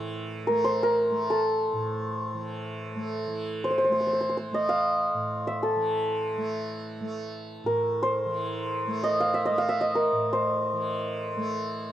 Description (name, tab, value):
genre	indian classical, Hindustani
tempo	free time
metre	none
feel	none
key	A raga todi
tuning	A4 = 439 Hz
part	santur	melody	0.0-11.9 s	A4 to F5	-26 LUFS	equal	none
part	tanpura	drone	0.0-11.9 s	A2 to A3	-34 LUFS	right 2 dB	none
room	little or no reverb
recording	dry, close 1970s-style studio recording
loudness	-25 LUFS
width	side -12 dB against mid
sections	0.0-3.3 A section; 3.3-11.9 A section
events	none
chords	none